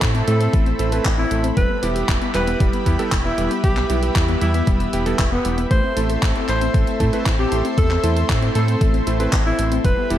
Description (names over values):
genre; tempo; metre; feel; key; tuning
italo disco; 116 BPM; 4/4; straight; A minor; A4 = 440 Hz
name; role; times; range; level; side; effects
lush unison pad; sustained chords; 0.0-10.2 s; G4 to C6; -27 LUFS; equal; chorus, shimmer reverb
warbly dusty pluck; arpeggios; 0.0-10.2 s; G3 to A4; -27 LUFS; left 4 dB; chorus, ping-pong delay, shimmer reverb
bright electric grand piano; stabs; 0.0-10.2 s; G3 to B4; -26 LUFS; right 4 dB; ping-pong delay, shimmer reverb
round analog bass; bass; 0.0-10.2 s; E1 to A2; -22 LUFS; equal; none
electronic kick drum; drums; 0.0-9.9 s; none; -20 LUFS; equal; overdrive
house drum kit; drums; 0.0-10.2 s; handclaps, hi-hat; -27 LUFS; equal; gated reverb
breathy alto saxophone; melody; 0.3-10.1 s; B3 to C5; -26 LUFS; equal; ping-pong delay, shimmer reverb
room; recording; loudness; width
light reverb, digital ambience; none; -16 LUFS; side -12 dB against mid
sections
0.0-10.2 A section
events
none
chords
0.0 Am; 1.6 Em; 5.7 Am